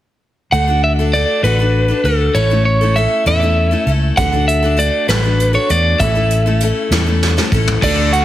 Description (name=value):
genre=folk rock and heartland rock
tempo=66 BPM (dotted quarters)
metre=6/8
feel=straight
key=A major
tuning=A4 = 440 Hz
part: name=lightly driven lead guitar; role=melody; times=0.5-8.2 s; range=A4 to F#5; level=-16 LUFS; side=right 2 dB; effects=slapback echo
part: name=picked steel-string acoustic guitar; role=accompaniment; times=0.5-8.2 s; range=A2 to A4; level=-19 LUFS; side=left 5 dB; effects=none
part: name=fingered electric bass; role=bass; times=0.5-8.2 s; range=A1 to E2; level=-16 LUFS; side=equal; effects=none
part: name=soft brush drum kit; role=drums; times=4.2-8.2 s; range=crash cymbal, hi-hat, kick drum, snare drum, toms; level=-19 LUFS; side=right 1 dB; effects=none
part: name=overdriven electric guitar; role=riff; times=7.8-8.2 s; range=D3 to F#4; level=-18 LUFS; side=right 1 dB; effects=none
room=light reverb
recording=heavily compressed radio sound, multiband compression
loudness=-12 LUFS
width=side -13 dB against mid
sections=0.5-7.8 A section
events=drum fill 6.9-7.8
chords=0.5 D; 2.4 A; 4.2 D; 6.0 A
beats=| 0.53 1.44 | 2.35 3.26 | 4.18 5.09 | 6.00 6.91 | 7.82